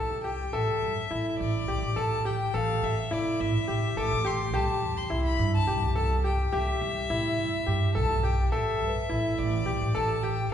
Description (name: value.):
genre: contemporary instrumental, chamber music in an uneven meter.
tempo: 210 BPM (eighths).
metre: 7/8.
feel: straight.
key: unclear.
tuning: A4 = 440 Hz.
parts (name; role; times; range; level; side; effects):
clear violin; melody; 0.0-10.5 s; D5 to D6; -32 LUFS; left 4 dB; none.
bright concert grand piano; arpeggios; 0.0-10.4 s; E4 to A4; -29 LUFS; equal; none.
upright bass; bass; 0.0-10.5 s; A1 to C3; -29 LUFS; right 1 dB; none.
large celesta; texture; 8.9-10.5 s; B4; -42 LUFS; left 2 dB; none.
room: wet concert hall reverb, RT60 2.1 s.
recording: heard from further back in the room, nothing above 10.8 kHz.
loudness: -25 LUFS.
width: side -9 dB against mid.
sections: 0.5-10.5 A section.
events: none.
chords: 0.0 C; 4.5 Cmaj7; 8.5 Dsus2/A.